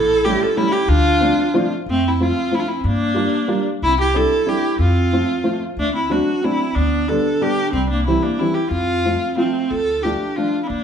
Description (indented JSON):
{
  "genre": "musette waltz",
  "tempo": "184 BPM",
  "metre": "3/4",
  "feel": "straight",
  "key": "F major",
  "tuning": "A4 = 441 Hz",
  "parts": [
    { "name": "rich viola", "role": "melody", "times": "0.0-10.8 s", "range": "C4 to A4", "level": "-20 LUFS", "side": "equal", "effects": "none" },
    { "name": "warm clarinet", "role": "second line", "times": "0.0-10.8 s", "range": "G3 to F4", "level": "-24 LUFS", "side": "right 2 dB", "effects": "none" },
    { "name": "upright bass", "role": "bass", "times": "0.0-10.8 s", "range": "A1 to G2", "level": "-21 LUFS", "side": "equal", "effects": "none" },
    { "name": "warm upright piano", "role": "accompaniment", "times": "0.3-10.5 s", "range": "D3 to G4", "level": "-21 LUFS", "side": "equal", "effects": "none" }
  ],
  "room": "wet large studio reverb, RT60 1.0 s",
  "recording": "band playing live in one room",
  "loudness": "-16 LUFS",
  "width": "side -8 dB against mid",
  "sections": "0.0-1.9 A section; 1.9-9.7 B section; 9.7-10.8 A section",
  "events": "none",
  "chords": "0.0 A7; 0.9 Dm7; 1.9 F; 2.9 Gm7; 3.8 Cadd9; 4.8 F; 5.8 D7; 6.8 G/D; 7.7 C; 8.7 F; 9.7 Dm"
}